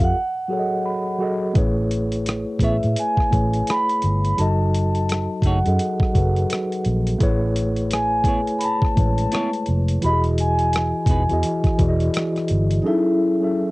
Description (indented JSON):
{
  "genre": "R&B, neo-soul",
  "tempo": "85 BPM",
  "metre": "4/4",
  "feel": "swing 61% on 16ths",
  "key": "unclear",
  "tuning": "A4 = 444 Hz",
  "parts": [
    { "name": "vibraphone with soft mallets", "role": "melody", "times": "0.0-13.5 s", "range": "D#4 to B5", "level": "-23 LUFS", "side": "equal", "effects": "cassette tape" },
    { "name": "mellow tine electric piano", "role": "accompaniment", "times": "0.0-13.7 s", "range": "E3 to B5", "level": "-23 LUFS", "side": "equal", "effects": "medium stereo tremolo, cassette tape" },
    { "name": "vintage muted fingered electric bass", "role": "bass", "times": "0.0-12.8 s", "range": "E1 to A2", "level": "-21 LUFS", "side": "equal", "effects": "none" },
    { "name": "dusty soul sampler-style drum kit", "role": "drums", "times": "0.0-12.8 s", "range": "hi-hat, kick drum, rim click", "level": "-22 LUFS", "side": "equal", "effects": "cassette tape" },
    { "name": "semi-hollow electric guitar", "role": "second line", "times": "2.6-11.2 s", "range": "A3 to C#5", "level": "-27 LUFS", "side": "right 2 dB", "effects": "cassette tape" }
  ],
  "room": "little or no reverb",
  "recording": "home recording on cassette",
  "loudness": "-18 LUFS",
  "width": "side -21 dB against mid",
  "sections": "0.0-1.6 A section; 1.6-12.8 B section",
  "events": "break 0.1-1.6; tine electric piano fill 0.5-1.6",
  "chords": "0.1 F#m69; 1.6 Amaj9; 4.4 F#m69; 7.2 Amaj9; 10.0 Emaj7; 12.8 F#m7"
}